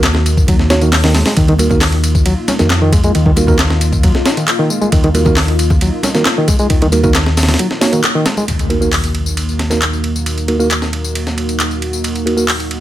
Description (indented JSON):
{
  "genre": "breakbeat, breaks",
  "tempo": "135 BPM",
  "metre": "4/4",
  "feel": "straight",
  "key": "Eb minor",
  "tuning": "A4 = 440 Hz",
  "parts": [
    { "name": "dark analog pad", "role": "sustained chords", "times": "0.1-12.8 s", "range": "Bb3 to Gb4", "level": "-22 LUFS", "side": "equal", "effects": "chorus, vintage 12-bit sampler grit, sidechain pumping" },
    { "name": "fingered electric bass", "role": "bass", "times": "0.0-12.8 s", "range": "Eb2 to F2", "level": "-16 LUFS", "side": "equal", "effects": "low-pass filter" },
    { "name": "breakbeat sampler-style drum kit", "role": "drums", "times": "0.0-12.8 s", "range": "hi-hat, kick drum, ride cymbal, snare drum", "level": "-16 LUFS", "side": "equal", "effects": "high-pass filter on kick, high-pass filter on cymbals, high-pass filter on snare, high-pass filter on hats" },
    { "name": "electronic handclaps and tambourine", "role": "drums", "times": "0.0-12.7 s", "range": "none", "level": "-20 LUFS", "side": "left 2 dB", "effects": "none" },
    { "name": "bongos and congas", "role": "percussion", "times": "0.1-8.5 s", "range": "none", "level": "-24 LUFS", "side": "right 2 dB", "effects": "none" },
    { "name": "reed electric piano", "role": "riff", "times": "0.5-8.4 s", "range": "Eb3 to Db4", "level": "-18 LUFS", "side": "equal", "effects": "fast tremolo, tube saturation, vintage 12-bit sampler grit, low-pass filter, ping-pong delay" },
    { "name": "mellow tine electric piano", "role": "stabs", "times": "0.7-12.4 s", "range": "Bb3 to Db5", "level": "-18 LUFS", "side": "right 2 dB", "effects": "vintage 12-bit sampler grit, ping-pong delay" },
    { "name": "impact", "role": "sound effects", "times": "8.5-10.3 s", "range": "none", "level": "-23 LUFS", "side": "left 1 dB", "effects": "none" }
  ],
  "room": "light reverb",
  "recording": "none",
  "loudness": "-11 LUFS",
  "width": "side -13 dB against mid",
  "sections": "0.0-8.5 A section; 8.5-12.8 B section",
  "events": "break 7.6-8.5; band accent 8.0; impact 8.5-10.3",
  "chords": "0.0 Ebm"
}